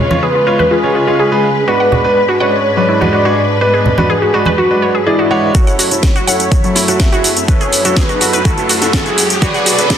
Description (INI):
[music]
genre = progressive house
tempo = 124 BPM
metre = 4/4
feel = straight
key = F# minor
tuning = A4 = 439 Hz
[part]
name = wide unison lead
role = melody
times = 0.0-10.0 s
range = E4 to E5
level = -16 LUFS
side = equal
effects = sidechain pumping, digital delay
[part]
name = muted studio string section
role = sustained chords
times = 0.0-10.0 s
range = F#2 to B4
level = -19 LUFS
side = left 1 dB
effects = sidechain pumping
[part]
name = clear baby grand piano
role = stabs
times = 0.0-9.9 s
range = F#3 to D5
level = -18 LUFS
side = right 2 dB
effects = sidechain pumping, low-pass filter, dub echo
[part]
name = glassy wavetable pluck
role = arpeggios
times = 0.1-9.7 s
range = F#3 to F#5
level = -17 LUFS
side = equal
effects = chorus, sidechain pumping, dub echo
[part]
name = congas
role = percussion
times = 0.1-4.6 s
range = none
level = -18 LUFS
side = right 2 dB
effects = sidechain pumping on perc
[part]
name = electronic kick drum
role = drums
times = 5.5-10.0 s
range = none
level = -13 LUFS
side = equal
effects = none
[part]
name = house drum kit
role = drums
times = 5.5-10.0 s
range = cabasa, hi-hat, snare drum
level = -15 LUFS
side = equal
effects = sidechain pumping on hats, sidechain pumping on perc
[part]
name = riser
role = sound effects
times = 6.4-10.0 s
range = none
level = -21 LUFS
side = right 2 dB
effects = none
[sound]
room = moderate digital room reverb, RT60 1.1 s, digital ambience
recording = dense, heavily limited modern master, high-pass filter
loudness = -10 LUFS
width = side -9 dB against mid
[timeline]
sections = 0.0-5.5 A section; 5.5-10.0 B section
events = filter sweep on synth arpeggio sound 0.0-5.5; build-up 5.5-10.0; filter sweep on grand piano 5.5-10.0; filter sweep 5.5-10.0; riser 6.4-10.0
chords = 0.0 C#; 1.7 G#dim; 5.5 F#m7; 9.4 Bm